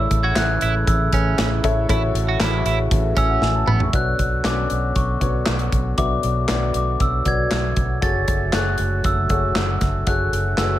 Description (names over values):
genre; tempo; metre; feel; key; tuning
piano-driven pop; 117 BPM; 4/4; straight; unclear; A4 = 440 Hz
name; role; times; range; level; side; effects
glockenspiel with rubber mallets; melody; 0.0-10.8 s; C#6 to A6; -25 LUFS; right 1 dB; ping-pong delay
warm upright piano; accompaniment; 0.0-10.8 s; A2 to C#6; -26 LUFS; left 4 dB; none
pedal harmonium; sustained chords; 0.0-10.8 s; C#3 to F#4; -29 LUFS; equal; none
vintage muted fingered electric bass; bass; 0.0-10.8 s; F#1 to B1; -22 LUFS; equal; none
modern studio drum kit; drums; 0.1-10.7 s; handclaps, hi-hat, kick drum, snare drum, toms; -23 LUFS; equal; none
twelve-string electric guitar; riff; 0.2-3.8 s; B3 to F#4; -26 LUFS; right 7 dB; none
room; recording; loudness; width
light reverb, studio reverb; none; -17 LUFS; side -13 dB against mid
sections
0.0-3.9 A section; 3.9-10.8 B section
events
drum fill 3.4-3.9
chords
0.0 A; 3.9 Bmadd9; 8.0 F#madd9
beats
0.36 0.87 1.38 | 1.89 2.40 2.92 3.43 | 3.94 4.45 4.96 5.47 | 5.98 6.49 7.00 7.52 | 8.03 8.54 9.05 9.56 | 10.07 10.58